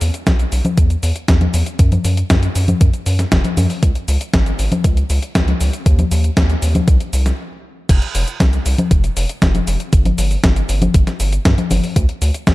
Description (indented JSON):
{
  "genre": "italo disco",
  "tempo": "118 BPM",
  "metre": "4/4",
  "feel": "straight",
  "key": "C# minor",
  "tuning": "A4 = 441 Hz",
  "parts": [
    { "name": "round analog bass", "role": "bass", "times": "0.0-12.5 s", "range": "F1 to G2", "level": "-17 LUFS", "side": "equal", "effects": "none" },
    { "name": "clean 12-bit digital drum machine", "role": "drums", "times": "0.0-12.5 s", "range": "cabasa, congas, crash cymbal, hi-hat, snare drum", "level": "-19 LUFS", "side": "left 2 dB", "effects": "overdrive" },
    { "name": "electronic kick drum", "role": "drums", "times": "0.3-12.5 s", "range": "none", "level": "-14 LUFS", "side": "equal", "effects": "overdrive" }
  ],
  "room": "little or no reverb",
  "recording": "dark, warm production",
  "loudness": "-13 LUFS",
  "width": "side -18 dB against mid",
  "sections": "0.0-7.9 A section; 7.9-12.5 B section",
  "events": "stop 7.4-7.9",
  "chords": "none",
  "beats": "0.27 0.78 1.28 | 1.79 2.30 2.81 3.32 | 3.83 4.33 4.84 5.35 | 5.86 6.37 6.88 7.39 | 7.89 8.40 8.91 9.42 | 9.93 10.44 10.95 11.45 | 11.96 12.47"
}